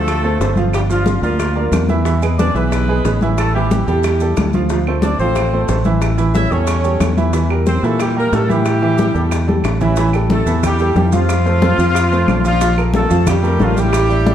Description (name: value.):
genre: latin, salsa.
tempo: 182 BPM.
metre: 4/4.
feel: straight.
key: unclear.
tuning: A4 = 442 Hz.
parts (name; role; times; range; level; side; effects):
mellow horn section; melody; 0.0-14.3 s; E3 to E5; -20 LUFS; equal; none.
bright baby grand piano; accompaniment; 0.0-14.3 s; E3 to G5; -20 LUFS; right 2 dB; none.
fingered electric bass; bass; 0.0-14.3 s; G1 to Bb2; -17 LUFS; equal; none.
bongos; percussion; 0.1-14.3 s; none; -25 LUFS; left 5 dB; none.
claves; percussion; 0.1-14.1 s; none; -33 LUFS; right 6 dB; none.
congas; percussion; 0.1-14.3 s; none; -22 LUFS; left 2 dB; none.
maracas; percussion; 0.1-14.3 s; none; -36 LUFS; right 6 dB; none.
room: wet large studio reverb, RT60 1.1 s.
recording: heard from further back in the room.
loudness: -13 LUFS.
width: side -10 dB against mid.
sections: 0.0-10.0 A section; 10.0-14.3 B section.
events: drum fill 9.5-10.0.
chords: 0.0 Dm7; 0.7 Gm7; 2.1 E; 3.4 A5; 4.7 Dm7; 6.0 A7; 7.3 Edim; 8.7 A5; 10.0 A7(no3); 11.3 F; 12.6 Bbmaj7.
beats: 0.07 0.40 | 0.73 1.06 1.40 1.73 | 2.06 2.39 2.72 3.05 | 3.38 3.71 4.04 4.37 | 4.70 5.03 5.36 5.69 | 6.02 6.35 6.68 7.01 | 7.34 7.67 7.99 8.32 | 8.65 8.98 9.31 9.64 | 9.97 10.30 10.63 10.96 | 11.29 11.62 11.95 12.28 | 12.61 12.94 13.27 13.60 | 13.93 14.26.